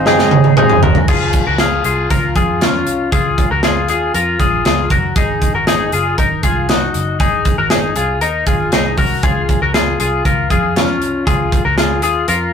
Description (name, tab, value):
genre	jangly indie pop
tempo	118 BPM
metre	4/4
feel	straight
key	Db major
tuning	A4 = 440 Hz
part	dark upright piano	melody	0.0-0.9 s	C5 to Eb5	-22 LUFS	left 1 dB	none
part	chorused retro synth keys	accompaniment	0.0-1.1 s	Eb4 to C5	-25 LUFS	right 4 dB	none
part	fingerpicked twelve-string acoustic guitar	accompaniment	0.0-1.1 s	Ab2 to Ab4	-18 LUFS	right 6 dB	none
part	twelve-string electric guitar	arpeggios	0.0-12.5 s	Db4 to Bb4	-16 LUFS	left 3 dB	none
part	vintage muted picked electric bass	bass	0.0-12.5 s	Gb1 to F2	-22 LUFS	equal	none
part	modern studio drum kit	drums	0.1-12.4 s	crash cymbal, hi-hat, kick drum, snare drum, toms	-15 LUFS	right 1 dB	none
room	moderate studio reverb, RT60 0.6 s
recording	rough rehearsal-room recording, warm saturation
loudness	-12 LUFS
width	side -7 dB against mid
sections	0.0-1.1 A section; 1.1-12.5 B section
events	drum fill 0.1-1.1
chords	0.0 Db6; 5.2 Ab; 9.2 Db6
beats	0.07 0.57 | 1.08 1.59 2.10 2.61 | 3.12 3.63 4.14 4.65 | 5.16 5.67 6.18 6.69 | 7.20 7.71 8.22 8.72 | 9.23 9.74 10.25 10.76 | 11.27 11.77 12.28